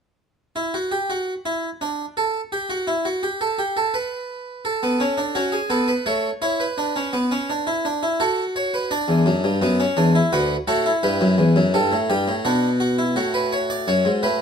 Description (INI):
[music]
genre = classical, baroque-style 4-part fugue for harpsichord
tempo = 84 BPM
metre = 3/4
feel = straight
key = B minor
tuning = A4 = 442 Hz
[part]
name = harpsichord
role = solo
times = 0.6-14.4 s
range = D2 to D5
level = -19 LUFS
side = equal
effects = none
[sound]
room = light reverb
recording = none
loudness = -19 LUFS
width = side -6 dB against mid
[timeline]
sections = 0.4-14.4 A section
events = none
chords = 0.4 N.C.; 4.7 F#m; 6.1 Aadd9; 6.8 Bm; 8.2 F#m; 8.9 Bm; 10.3 Bm/D; 11.0 Em; 12.5 Bm; 13.2 F#m/A